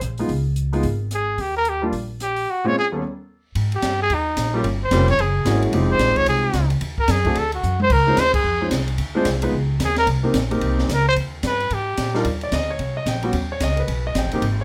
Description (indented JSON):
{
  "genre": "jazz, small-group swing and bop",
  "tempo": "221 BPM",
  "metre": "4/4",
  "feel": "swing 61% on 8ths",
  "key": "Eb major, Ab major from 3.6 s",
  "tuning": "A4 = 437 Hz",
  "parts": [
    { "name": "upright bass", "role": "bass", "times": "0.0-14.6 s", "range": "Eb1 to Bb2", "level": "-25 LUFS", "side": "equal", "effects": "none" },
    { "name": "open jazz drum kit", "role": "drums", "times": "0.0-14.5 s", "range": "crash cymbal, hi-hat, kick drum, ride cymbal, rim click, snare drum, toms", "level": "-30 LUFS", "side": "equal", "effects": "none" },
    { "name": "warm concert grand piano", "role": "accompaniment", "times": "0.2-14.6 s", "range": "Eb2 to G5", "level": "-26 LUFS", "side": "equal", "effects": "none" },
    { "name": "clear trumpet", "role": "melody", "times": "1.1-12.2 s", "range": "Eb4 to Db5", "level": "-23 LUFS", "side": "equal", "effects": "none" }
  ],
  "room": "moderate studio reverb, RT60 0.5 s",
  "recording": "none",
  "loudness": "-21 LUFS",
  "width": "mono",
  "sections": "0.0-3.6 A section; 3.6-12.3 B section; 12.3-14.6 C section",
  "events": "drum fill 7.6; band accent 8.3",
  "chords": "0.3 Db5; 1.4 Eb; 2.5 Bbm7; 3.0 N.C.; 3.6 Absus2; 4.6 Gm7b5; 5.2 Gb9; 5.7 Fm7; 6.8 Ebm; 7.4 D; 7.9 Dbmaj9; 9.0 Dm7b5; 9.5 Dbsus2; 10.1 Cm7; 11.2 Eb; 12.3 Ebmaj7; 13.3 Eb7b13"
}